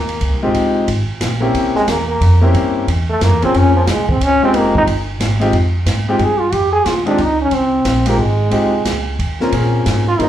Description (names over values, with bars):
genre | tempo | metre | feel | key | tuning
jazz, small-group swing and bop | 180 BPM | 3/4 | swing 64% on 8ths | F minor | A4 = 440 Hz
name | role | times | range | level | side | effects
warm trombone | second line | 0.0-10.3 s | F3 to Ab4 | -16 LUFS | right 1 dB | plate reverb, slapback echo
upright bass | bass | 0.0-10.3 s | F1 to Bb2 | -17 LUFS | equal | none
open jazz drum kit | drums | 0.1-10.3 s | hi-hat, kick drum, ride cymbal, snare drum | -22 LUFS | right 1 dB | none
warm concert grand piano | accompaniment | 0.4-10.3 s | Ab3 to Bb4 | -17 LUFS | left 2 dB | plate reverb, slapback echo
room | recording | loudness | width
moderate club reverb, RT60 0.5 s | live gig heard through the venue's PA, club ambience | -13 LUFS | side -11 dB against mid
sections
0.0-5.5 A section; 5.5-10.3 A section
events
trombone solo 0.0-10.3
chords
0.0 Fm7; 1.5 C7b9; 3.5 Bbm7; 4.5 Fm7; 9.5 Bbm7